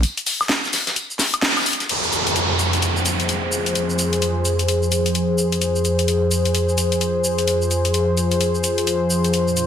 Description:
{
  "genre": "bass house",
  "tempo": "129 BPM",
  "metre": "4/4",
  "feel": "swing 61% on 16ths",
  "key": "F minor",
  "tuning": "A4 = 440 Hz",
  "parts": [
    { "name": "house drum kit", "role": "drums", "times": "0.0-9.7 s", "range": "crash cymbal, hi-hat, shaker, snare drum, woodblock", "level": "-22 LUFS", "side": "left 2 dB", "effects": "overdrive, studio reverb" },
    { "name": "tambourine and snare drum", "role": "drums", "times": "0.0-1.9 s", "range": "none", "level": "-27 LUFS", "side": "equal", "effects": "high-pass filter on hats, studio reverb, high-pass filter on snare, high-pass filter on perc, high-pass filter on room" },
    { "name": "sweeping resonant pad", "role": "sustained chords", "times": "2.2-9.7 s", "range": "F2 to C5", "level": "-19 LUFS", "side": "equal", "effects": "chorus" },
    { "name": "downlifter", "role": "sound effects", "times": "1.9-5.6 s", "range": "none", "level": "-23 LUFS", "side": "right 1 dB", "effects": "none" }
  ],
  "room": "wet digital room reverb, RT60 1.0 s, small room ambience",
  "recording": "dense, heavily limited modern master",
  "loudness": "-17 LUFS",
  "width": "side -8 dB against mid",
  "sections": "0.0-1.9 A section; 1.9-9.7 B section",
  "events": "band accent 1.4",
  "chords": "0.0 N.C.; 1.9 Fm",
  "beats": "| 0.03 0.50 0.96 1.43 | 1.89 2.36 2.82 3.29 | 3.75 4.22 4.68 5.15 | 5.62 6.08 6.54 7.01 | 7.47 7.94 8.41 8.87 | 9.34"
}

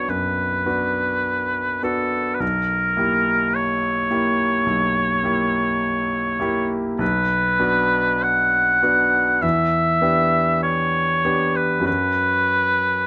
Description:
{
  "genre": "classical, romantic duo for oboe and grand piano",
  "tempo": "47-54 BPM",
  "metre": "4/4",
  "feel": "rubato",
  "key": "B minor",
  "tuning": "A4 = 440 Hz",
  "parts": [
    { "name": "clear oboe", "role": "melody", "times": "0.0-13.1 s", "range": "A4 to F#5", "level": "-21 LUFS", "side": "equal", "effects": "none" },
    { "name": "bright grand piano", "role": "accompaniment", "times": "0.0-13.1 s", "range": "B1 to G4", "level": "-25 LUFS", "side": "equal", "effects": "none" }
  ],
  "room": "little or no reverb",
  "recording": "close, detailed microphones",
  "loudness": "-20 LUFS",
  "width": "mono",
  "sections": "0.0-13.1 A section",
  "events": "none",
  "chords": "0.0 Bm; 2.4 A#dim7/B; 7.0 Bm; 9.4 Em7; 11.9 F#5",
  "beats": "0.09 1.26 | 2.42 3.56 4.68 5.83 | 7.01 8.24 9.43 10.64 | 11.87"
}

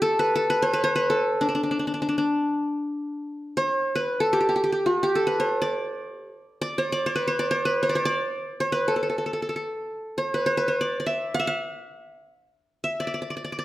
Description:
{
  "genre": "Arabic maqam ensemble",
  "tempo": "free time",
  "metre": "none",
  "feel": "none",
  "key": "D maqam rast",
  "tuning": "A4 = 441 Hz",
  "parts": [
    { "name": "qanun", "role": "solo", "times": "0.0-13.6 s", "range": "D4 to F#5-50c", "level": "-23 LUFS", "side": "equal", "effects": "none" }
  ],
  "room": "moderate recital hall reverb, RT60 1.2 s",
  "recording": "none",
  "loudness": "-23 LUFS",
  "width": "side -15 dB against mid",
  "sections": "0.0-3.3 A section; 3.3-13.6 A section",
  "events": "none",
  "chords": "none",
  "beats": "free time"
}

